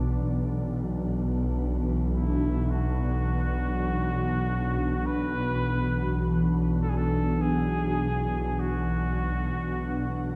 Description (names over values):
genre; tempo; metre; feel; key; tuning
ambient; free time; none; none; B dorian; A4 = 440 Hz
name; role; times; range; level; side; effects
clear flugelhorn; melody; 0.0-10.4 s; D4 to B4; -36 LUFS; equal; shimmer reverb, dub echo
glassy FM pad; sustained chords; 0.0-10.4 s; B2 to F#4; -31 LUFS; equal; ensemble chorus, built-in reverb, phaser
rich studio double bass section; bass; 0.0-10.4 s; B1; -30 LUFS; equal; tube saturation
room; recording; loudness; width
moderate spring reverb, RT60 2.5 s; echo-heavy mix; -27 LUFS; mono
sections
0.0-10.4 A section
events
none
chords
0.0 Bm